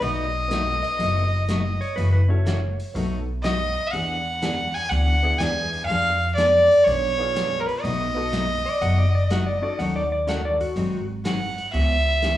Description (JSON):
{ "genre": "country, western swing", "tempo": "123 BPM", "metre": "4/4", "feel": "swing 67% on 8ths", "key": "B mixolydian", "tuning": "A4 = 440 Hz", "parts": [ { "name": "clear fiddle", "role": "melody", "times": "0.0-12.4 s", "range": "A#4 to G#5", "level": "-22 LUFS", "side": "equal", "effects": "slapback echo" }, { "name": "picked steel-string acoustic guitar", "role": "accompaniment", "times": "0.0-12.4 s", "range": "B2 to A4", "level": "-29 LUFS", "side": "equal", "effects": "slapback echo" }, { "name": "upright bass", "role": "bass", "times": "0.0-12.4 s", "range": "F#1 to F2", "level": "-24 LUFS", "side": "equal", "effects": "none" }, { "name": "vintage drum kit", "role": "drums", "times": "0.0-12.4 s", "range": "hi-hat, snare drum", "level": "-36 LUFS", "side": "left 2 dB", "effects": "none" }, { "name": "honky-tonk upright piano", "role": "accompaniment", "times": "0.5-10.8 s", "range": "B3 to A4", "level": "-34 LUFS", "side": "equal", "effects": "slapback echo" }, { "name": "clean lap steel guitar", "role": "second line", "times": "0.8-3.2, 8.7-11.1 s", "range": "F#4 to F#5", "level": "-28 LUFS", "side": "left 1 dB", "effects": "slapback echo" } ], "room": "moderate plate reverb, RT60 1.0 s", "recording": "live gig heard through the venue's PA, club reverb, small room ambience", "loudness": "-20 LUFS", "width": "side -13 dB against mid", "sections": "0.0-12.4 A section", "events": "none", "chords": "0.0 B7; 2.0 F#m7; 3.0 B7; 3.9 E7; 5.9 Fdim7; 7.8 B7; 9.8 D#m7b5; 10.8 G#7; 11.7 C#m7" }